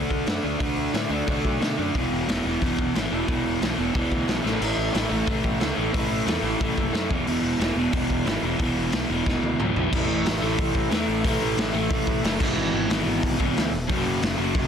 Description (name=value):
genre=punk rock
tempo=181 BPM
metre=4/4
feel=straight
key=unclear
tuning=A4 = 440 Hz
part: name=crunchy overdriven guitar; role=riff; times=0.0-14.7 s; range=E2 to D4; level=-24 LUFS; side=equal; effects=none
part: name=fuzz picked electric bass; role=bass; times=0.0-14.7 s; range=E1 to B2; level=-30 LUFS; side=equal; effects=overdrive
part: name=raw garage drum kit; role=drums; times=0.1-14.6 s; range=crash cymbal, hi-hat, kick drum, snare drum, splash cymbal, toms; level=-27 LUFS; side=equal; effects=none
room=studio reverb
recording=dense, heavily limited modern master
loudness=-22 LUFS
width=side -8 dB against mid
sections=0.0-9.9 A section; 9.9-14.7 B section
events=drum fill 4.4, 9.3-9.9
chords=0.0 D5; 1.9 E5; 4.4 A5; 7.1 E5; 9.9 A5; 12.4 E/G#; 13.9 F#5